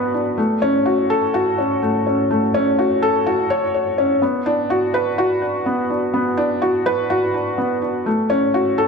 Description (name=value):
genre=electronica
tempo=125 BPM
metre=4/4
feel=straight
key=unclear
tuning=A4 = 440 Hz
part: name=felt-muted upright piano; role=solo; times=0.0-8.9 s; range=A3 to C#5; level=-16 LUFS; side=left 1 dB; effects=none
room=wet echo chamber reverb, RT60 1.9 s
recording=none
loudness=-16 LUFS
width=side -5 dB against mid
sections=0.0-4.2 A section; 4.2-8.9 B section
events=build-up 0.0-4.2; drop 4.2-8.9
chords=none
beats=| 0.38 0.86 1.34 1.82 | 2.30 2.78 3.26 3.74 | 4.22 4.70 5.18 5.66 | 6.14 6.62 7.10 7.58 | 8.06 8.54